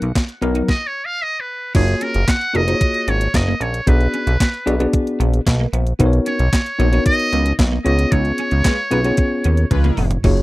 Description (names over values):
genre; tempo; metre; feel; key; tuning
early-eighties boogie funk; 113 BPM; 4/4; straight; F# major; A4 = 441 Hz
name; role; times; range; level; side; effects
trumpet with metal mute; melody; 0.0-10.0 s; G#4 to F#5; -22 LUFS; right 1 dB; none
mellow tine electric piano; accompaniment; 0.0-10.4 s; F#3 to D5; -20 LUFS; left 2 dB; none
electric guitar at the edge of break-up; riff; 0.0-10.3 s; A#3 to D#4; -30 LUFS; right 5 dB; ensemble chorus
chorused synth bass; bass; 0.0-10.4 s; E#1 to D#2; -17 LUFS; equal; none
clean 12-bit digital drum machine; drums; 0.0-10.4 s; crash cymbal, handclaps, hi-hat, kick drum, snare drum, toms; -18 LUFS; equal; overdrive
analog synth brass; second line; 8.7-10.1 s; G#3 to B4; -25 LUFS; equal; chorus
room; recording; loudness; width
little or no reverb; rough home demo mix; -15 LUFS; side -19 dB against mid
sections
0.0-1.7 A section; 1.7-10.4 B section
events
muted trumpet solo 0.0-1.7; stop 0.7-1.7; band accent 8.1-10.2; drum fill 9.7-10.2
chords
0.0 Bmaj7; 0.7 N.C.; 1.7 F#maj9; 3.9 Bm6; 6.0 Bmaj9; 7.9 C#7